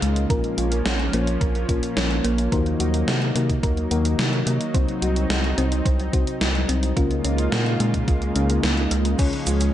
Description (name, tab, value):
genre	synthwave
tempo	108 BPM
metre	4/4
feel	straight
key	unclear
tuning	A4 = 442 Hz
part	lush unison pad	sustained chords	0.0-9.7 s	Db3 to F4	-26 LUFS	equal	chorus, sidechain pumping
part	thumb-piano-like synth pluck	arpeggios	0.0-9.7 s	Ab3 to C5	-29 LUFS	right 1 dB	chorus, tape echo
part	mellow FM electric piano	stabs	0.0-9.7 s	Bb2 to Eb5	-28 LUFS	left 4 dB	chorus, tape echo
part	round analog bass	bass	0.0-9.7 s	Bb1 to C3	-24 LUFS	equal	sidechain pumping
part	gated 80s digital drum machine	drums	0.0-9.7 s	cabasa, crash cymbal, hi-hat, snare drum	-27 LUFS	equal	gated reverb, gated reverb snare
part	electronic kick drum	drums	0.3-9.3 s	none	-23 LUFS	equal	none
room	light reverb, digital ambience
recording	nothing above 10.9 kHz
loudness	-19 LUFS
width	side -12 dB against mid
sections	0.0-9.2 A section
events	kick drops out 8.6-9.2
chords	0.3 Bbm; 2.5 Ebm; 4.7 Cdim; 7.0 Db6